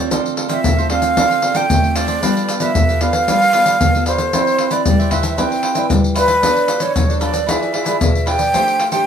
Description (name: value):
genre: samba and choro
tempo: 114 BPM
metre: 4/4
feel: straight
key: unclear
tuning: A4 = 441 Hz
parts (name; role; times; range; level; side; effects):
- breathy jazz flute; melody; 0.0-9.1 s; B4 to G5; -17 LUFS; right 1 dB; none
- cavaquinho; accompaniment; 0.0-9.0 s; D4 to G5; -23 LUFS; right 7 dB; none
- nylon-string guitar; accompaniment; 0.0-9.1 s; B2 to D5; -21 LUFS; left 1 dB; none
- egg shaker, surdo and pandeiro; percussion; 0.1-9.1 s; none; -18 LUFS; left 1 dB; none
room: moderate studio reverb, RT60 0.5 s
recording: minimal, uncompressed stereo recording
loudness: -13 LUFS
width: side -8 dB against mid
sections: 0.0-9.1 A section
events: none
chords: 0.1 Dm7; 2.2 G9; 4.3 Cmaj9; 6.4 Bm9; 7.5 E7b9; 8.5 Am7